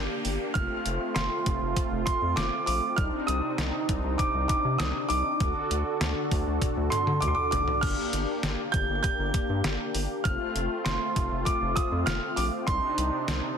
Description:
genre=synth-pop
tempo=99 BPM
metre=4/4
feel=straight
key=G minor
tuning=A4 = 440 Hz
part: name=warm concert grand piano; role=melody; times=0.0-13.6 s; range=C6 to G6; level=-30 LUFS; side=right 2 dB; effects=ping-pong delay
part: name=brassy analog pad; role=sustained chords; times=0.0-13.6 s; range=C3 to A4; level=-31 LUFS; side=equal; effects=chorus
part: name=round analog bass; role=bass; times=0.0-13.4 s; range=F1 to D3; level=-31 LUFS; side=equal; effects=none
part: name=downlifter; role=sound effects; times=0.0-3.0 s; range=none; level=-44 LUFS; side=equal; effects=none
part: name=detuned 8-bit digital drum machine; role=drums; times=0.2-13.4 s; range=crash cymbal, hi-hat, kick drum, snare drum, toms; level=-30 LUFS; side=equal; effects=none
room=moderate concert hall reverb, RT60 2.5 s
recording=dense, heavily limited modern master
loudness=-25 LUFS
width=side -7 dB against mid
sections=0.0-13.6 A section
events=drum fill 6.6-7.8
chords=0.0 Gm; 0.6 F; 3.0 Cmadd9; 5.4 D; 7.8 Gm; 10.3 F; 12.7 Cmadd9

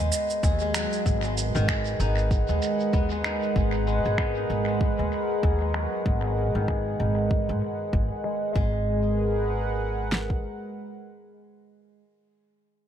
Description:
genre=organic downtempo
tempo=96 BPM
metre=4/4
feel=swing 58% on 16ths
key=G# minor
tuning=A4 = 440 Hz
part: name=warm analog pad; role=sustained chords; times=0.0-11.8 s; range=G#3 to F#5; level=-30 LUFS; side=right 1 dB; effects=chorus, sidechain pumping
part: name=steel-string zither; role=arpeggios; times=0.0-12.0 s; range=D#3 to G#4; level=-30 LUFS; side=left 1 dB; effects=low-pass filter, tape echo
part: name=upright bass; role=bass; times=0.0-10.4 s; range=G#1 to G#2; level=-27 LUFS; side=equal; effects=sidechain pumping
part: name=electronic shaker and finger snaps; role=drums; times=0.1-8.5 s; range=none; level=-34 LUFS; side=right 1 dB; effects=low-pass filter on hats, low-pass filter on perc, low-pass filter on snare, tape echo
part: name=deep house drum kit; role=drums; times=0.4-10.4 s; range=kick drum, snare drum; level=-26 LUFS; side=equal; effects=none
room=moderate echo chamber reverb, RT60 1.4 s, studio ambience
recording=echo-heavy mix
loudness=-23 LUFS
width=side -10 dB against mid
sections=0.0-8.6 A section; 8.6-11.1 B section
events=filter sweep on drum 0.0-8.6; filter sweep on guzheng 0.0-8.6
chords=0.0 G#m7

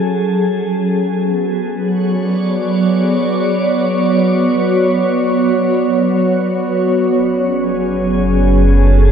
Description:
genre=ambient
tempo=free time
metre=none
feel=none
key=unclear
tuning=A4 = 440 Hz
part: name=glassy FM pad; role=sustained chords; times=0.0-9.1 s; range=F#3 to D5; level=-13 LUFS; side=equal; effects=ensemble chorus, built-in reverb
part: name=round analog bass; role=bass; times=7.2-9.1 s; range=F#1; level=-12 LUFS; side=equal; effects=none
room=wet concert hall reverb, RT60 2.1 s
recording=none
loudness=-12 LUFS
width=side -8 dB against mid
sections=0.0-7.2 A section; 7.2-9.1 B section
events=none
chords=0.0 F#madd9; 0.8 Bm7/F#; 7.2 F#madd9

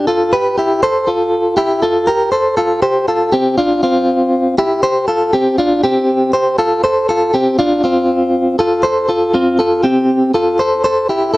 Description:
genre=indie pop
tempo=120 BPM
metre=4/4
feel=straight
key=F major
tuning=A4 = 441 Hz
part: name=direct-recorded clean electric guitar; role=solo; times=0.0-11.4 s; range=C4 to C5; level=-12 LUFS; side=equal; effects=tremolo
room=little or no reverb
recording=dry, close 1970s-style studio recording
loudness=-12 LUFS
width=side -19 dB against mid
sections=0.0-2.8 A section; 2.8-10.8 B section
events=none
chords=0.0 G7; 0.8 F; 2.8 Csus4; 6.6 F; 10.8 Am7

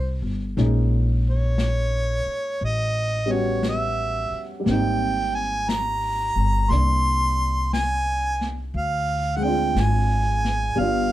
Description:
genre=jazz ballad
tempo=59 BPM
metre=4/4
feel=swing 66% on 8ths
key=unclear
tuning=A4 = 440 Hz
part: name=warm harmonica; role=melody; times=0.0-11.1 s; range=C5 to C6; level=-24 LUFS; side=right 2 dB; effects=none
part: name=warm baby grand piano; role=accompaniment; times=0.0-11.1 s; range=G3 to F#4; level=-28 LUFS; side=equal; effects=none
part: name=upright bass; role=bass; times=0.0-11.1 s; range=G1 to D2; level=-23 LUFS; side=equal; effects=none
part: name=vintage brush drum kit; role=drums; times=0.6-11.1 s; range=brushed snare drum, hi-hat, snare drum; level=-31 LUFS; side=left 2 dB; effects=none
room=light reverb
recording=dark, warm production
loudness=-20 LUFS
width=side -14 dB against mid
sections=0.0-11.1 A section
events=none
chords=0.0 Fmaj9 (rootless); 0.6 Bbm7; 2.6 A13; 4.7 Abmaj9; 8.8 Dm7b5

